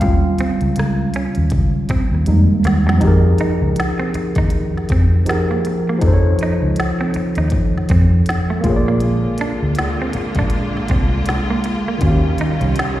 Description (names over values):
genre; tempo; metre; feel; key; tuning
R&B, neo-soul; 80 BPM; 4/4; swing 59% on 16ths; F minor; A4 = 436 Hz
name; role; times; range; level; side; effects
barky tine electric piano; accompaniment; 0.0-13.0 s; Eb3 to F5; -20 LUFS; equal; medium stereo tremolo, slapback echo
vintage muted fingered electric bass; bass; 0.0-12.7 s; Bb1 to F2; -16 LUFS; equal; none
organic electronic drum kit; drums; 0.0-13.0 s; hi-hat, kick drum, rim click, snare drum; -21 LUFS; equal; none
semi-hollow electric guitar; second line; 0.4-12.5 s; A3 to Eb4; -27 LUFS; right 3 dB; slapback echo
bright studio string section; sustained chords; 9.0-13.0 s; D3 to F4; -24 LUFS; equal; none
room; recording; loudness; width
light reverb, digital ambience; live gig heard through the venue's PA, recital hall reverb; -14 LUFS; side -14 dB against mid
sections
0.0-3.0 A section; 3.0-13.0 B section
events
tine electric piano solo 0.0-3.0; drum fill 2.3-3.0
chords
0.0 Eb9; 2.3 Fm11; 6.0 F7b13; 8.6 Bb7; 12.0 Eb9